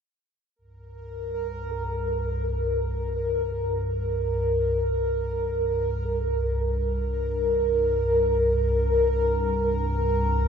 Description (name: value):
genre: dark ambient drone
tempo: free time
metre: none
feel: none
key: unclear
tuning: A4 = 439 Hz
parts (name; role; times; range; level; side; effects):
- deep rumbling drone; drone; 0.9-10.5 s; C2 to G2; -27 LUFS; equal; built-in reverb, phaser
- bubbling stepped-filter texture; texture; 1.1-10.5 s; Bb4; -25 LUFS; equal; chorus, built-in reverb
room: wet huge ambient reverb, RT60 8.0 s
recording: nothing above 7.8 kHz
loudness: -23 LUFS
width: side -7 dB against mid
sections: 0.6-10.5 A section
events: none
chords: 0.6 C5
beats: free time